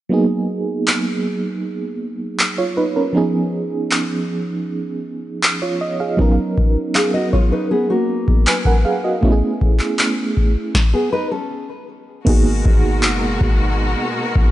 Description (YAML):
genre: contemporary R&B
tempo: 79 BPM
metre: 4/4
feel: straight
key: G# dorian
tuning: A4 = 440 Hz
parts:
  - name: FM electric piano with tremolo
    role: accompaniment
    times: 0.1-14.5 s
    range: E#3 to G#5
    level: -20 LUFS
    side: right 2 dB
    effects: none
  - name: booming analog drum machine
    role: drums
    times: 0.9-14.5 s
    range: crash cymbal, handclaps, kick drum, snare drum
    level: -17 LUFS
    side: equal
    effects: none
  - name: nylon-string guitar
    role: arpeggios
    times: 6.9-11.7 s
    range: A#3 to E#5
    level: -20 LUFS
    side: left 1 dB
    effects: digital delay
  - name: clear studio string section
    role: sustained chords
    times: 12.3-14.5 s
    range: B2 to A#4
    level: -23 LUFS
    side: left 2 dB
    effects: none
  - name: clean 808-style bass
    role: bass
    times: 12.3-14.5 s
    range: F#1 to G#1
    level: -18 LUFS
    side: equal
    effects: none
room: light reverb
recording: nothing above 10.6 kHz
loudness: -16 LUFS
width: side -14 dB against mid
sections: 0.1-12.3 A section; 12.3-14.5 B section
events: stop 10.7-12.3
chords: 0.1 G#m9; 3.2 C#9; 6.2 Bmaj7; 9.2 Amaj7; 11.5 N.C.; 12.3 G#m9